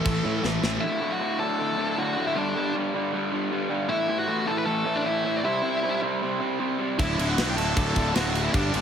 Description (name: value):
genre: punk rock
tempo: 156 BPM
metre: 4/4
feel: straight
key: D major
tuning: A4 = 440 Hz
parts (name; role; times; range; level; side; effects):
- high-gain lead guitar; melody; 0.0-8.8 s; D4 to B5; -28 LUFS; left 1 dB; distortion
- distorted electric guitar; riff; 0.0-0.8, 7.0-8.8 s; D2 to A3; -30 LUFS; right 1 dB; overdrive, slapback echo
- raw garage guitar; riff; 0.0-8.8 s; D2 to C4; -26 LUFS; equal; overdrive, slapback echo
- fuzz picked electric bass; bass; 0.1-0.8, 7.0-8.8 s; D1 to A2; -29 LUFS; equal; overdrive
- tight metal drum kit; drums; 0.1-0.7, 7.0-8.8 s; crash cymbal, kick drum, snare drum; -28 LUFS; equal; none
room: moderate concert hall reverb, RT60 2.1 s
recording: big arena sound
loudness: -23 LUFS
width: side -8 dB against mid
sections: 0.8-8.8 A section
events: drum fill 0.4-0.8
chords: 0.0 A5; 0.8 D; 2.4 G5; 3.9 A5; 5.5 C; 7.0 D